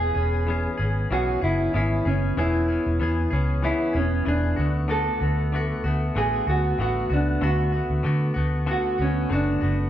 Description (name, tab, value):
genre	indie pop, bedroom pop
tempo	95 BPM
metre	4/4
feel	swing 55% on 16ths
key	E mixolydian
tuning	A4 = 440 Hz
part	mellow electric guitar	melody	0.0-9.8 s	C#4 to A4	-26 LUFS	right 1 dB	none
part	direct-recorded clean electric guitar	accompaniment	0.0-9.9 s	D3 to G#4	-28 LUFS	left 3 dB	warbly pitch drift
part	vintage muted fingered electric bass	bass	0.0-9.9 s	E1 to D3	-24 LUFS	equal	none
room	wet large studio reverb, RT60 1.3 s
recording	band playing live in one room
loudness	-21 LUFS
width	side -11 dB against mid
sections	0.0-9.9 A section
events	none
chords	0.0 E6; 4.6 D6